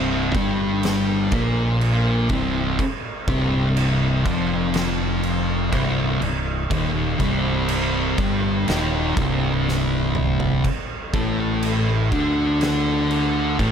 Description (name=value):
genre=stoner and doom metal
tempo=61 BPM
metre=4/4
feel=straight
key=C dorian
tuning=A4 = 440 Hz
part: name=thick fuzz guitar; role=riff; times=0.0-13.7 s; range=C2 to D4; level=-20 LUFS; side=equal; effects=distortion
part: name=modern bright fingered electric bass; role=bass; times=0.0-13.7 s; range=C1 to D2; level=-26 LUFS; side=equal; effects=overdrive
part: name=oversized low-tuned drum kit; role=drums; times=0.3-13.7 s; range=crash cymbal, kick drum, snare drum, toms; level=-26 LUFS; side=right 1 dB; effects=none
room=small room ambience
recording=none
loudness=-19 LUFS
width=side -8 dB against mid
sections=0.0-13.7 A section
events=drum fill 9.7-10.6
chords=0.0 Cm; 10.6 Csus2 (rootless)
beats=0.84 1.82 | 2.80 3.77 4.75 5.74 | 6.72 7.70 8.68 9.66 | 10.64 11.62 12.61 13.59